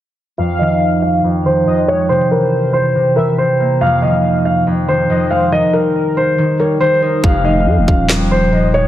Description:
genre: hip hop, drill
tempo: 140 BPM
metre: 4/4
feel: half-time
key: F minor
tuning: A4 = 439 Hz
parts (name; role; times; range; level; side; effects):
- dark concert grand piano; melody; 0.4-8.9 s; Bb4 to F5; -16 LUFS; equal; low-pass filter, ping-pong delay
- warm velvety synth lead; second line; 0.4-8.9 s; Bb4 to F5; -21 LUFS; left 2 dB; chorus, ping-pong delay
- concert harp; accompaniment; 0.4-8.9 s; F2 to Eb4; -15 LUFS; right 1 dB; low-pass filter
- growling 808-style bass; bass; 7.2-8.9 s; Eb1 to F2; -15 LUFS; equal; none
- drill drum kit; drums; 7.2-8.2 s; handclaps, kick drum, snare drum; -15 LUFS; equal; none
room: light reverb, studio reverb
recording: none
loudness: -12 LUFS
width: side -12 dB against mid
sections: 0.4-7.2 A section; 7.2-8.9 B section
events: filter sweep 0.4-7.2; hi-hats muted 7.2-8.9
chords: 0.4 Fm7; 2.1 C7; 3.8 Fm7; 5.5 Eb; 7.2 F7(no3)

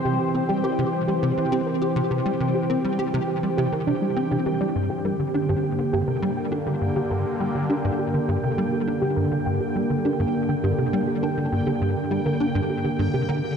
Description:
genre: ambient, sequencer-driven space music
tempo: 102 BPM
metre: 4/4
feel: straight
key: G dorian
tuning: A4 = 440 Hz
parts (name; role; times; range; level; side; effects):
- sweeping resonant pad; sustained chords; 0.0-13.6 s; D3 to C5; -25 LUFS; equal; chorus
- soft round pluck; arpeggios; 0.0-13.3 s; G3 to G5; -30 LUFS; moving between left 3 dB and right 4 dB; chorus, auto-pan, tape echo
- bubbling stepped-filter texture; texture; 0.0-13.6 s; G5; -37 LUFS; right 2 dB; chorus, built-in reverb
- tight sequencer bass; riff; 0.1-13.4 s; G2 to G4; -25 LUFS; equal; ensemble chorus, tape echo
room: wet cathedral reverb, RT60 5.0 s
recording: dreamy mix soaked in reverb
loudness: -21 LUFS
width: side -7 dB against mid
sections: 0.0-13.6 A section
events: fade-in on synth texture 0.0-13.6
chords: 0.0 C; 4.8 Gm

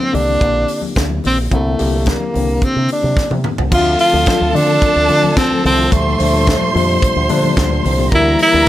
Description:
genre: disco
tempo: 109 BPM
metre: 4/4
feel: straight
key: D minor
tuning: A4 = 443 Hz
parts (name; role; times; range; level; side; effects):
- breathy tenor saxophone; melody; 0.0-8.7 s; A3 to F4; -15 LUFS; equal; none
- tine electric piano; accompaniment; 0.0-8.7 s; Bb2 to G4; -21 LUFS; left 4 dB; overdrive, fast stereo tremolo
- fingered electric bass with an envelope filter; bass; 0.1-8.6 s; Bb1 to D3; -18 LUFS; equal; none
- tight funk drum kit; drums; 0.1-8.7 s; crash cymbal, hi-hat, kick drum, snare drum, toms; -19 LUFS; equal; none
- congas; percussion; 0.1-8.5 s; none; -27 LUFS; left 5 dB; none
- warm studio violin section; second line; 3.7-8.7 s; A4 to C6; -19 LUFS; right 1 dB; tape echo
room: studio ambience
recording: none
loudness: -12 LUFS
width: side -14 dB against mid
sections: 0.0-3.7 A section; 3.7-8.7 B section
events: drum fill 3.2-3.7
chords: 0.0 C9; 3.7 Dm7; 5.9 Gm9/D; 8.1 Em7b5/D

